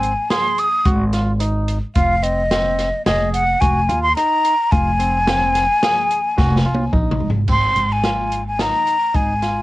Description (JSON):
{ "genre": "progressive instrumental, band music in an uneven meter", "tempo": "109 BPM", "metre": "5/4", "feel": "straight", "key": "unclear", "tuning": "A4 = 440 Hz", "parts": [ { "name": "breathy concert flute", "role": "melody", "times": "0.0-9.6 s", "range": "Eb5 to Eb6", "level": "-17 LUFS", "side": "left 1 dB", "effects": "cassette tape" }, { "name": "clean electric guitar", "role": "arpeggios", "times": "0.0-9.6 s", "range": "C4 to Ab4", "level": "-26 LUFS", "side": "right 1 dB", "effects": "cassette tape" }, { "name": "upright bass", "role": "bass", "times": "0.0-9.6 s", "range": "F1 to Eb2", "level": "-21 LUFS", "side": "equal", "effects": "none" }, { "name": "open jazz drum kit", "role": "drums", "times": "0.0-9.5 s", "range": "crash cymbal, hi-hat, kick drum, snare drum, toms", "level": "-21 LUFS", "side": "equal", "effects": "none" } ], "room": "little or no reverb", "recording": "home recording on cassette", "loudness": "-15 LUFS", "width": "side -17 dB against mid", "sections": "0.0-7.5 A section; 7.5-9.6 B section", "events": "drum fill 6.4-7.5", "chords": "0.0 Fm; 7.5 Ab", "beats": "0.31 0.86 1.41 | 1.96 2.52 3.07 3.62 4.17 | 4.72 5.28 5.83 6.38 6.93 | 7.49 8.04 8.59 9.14" }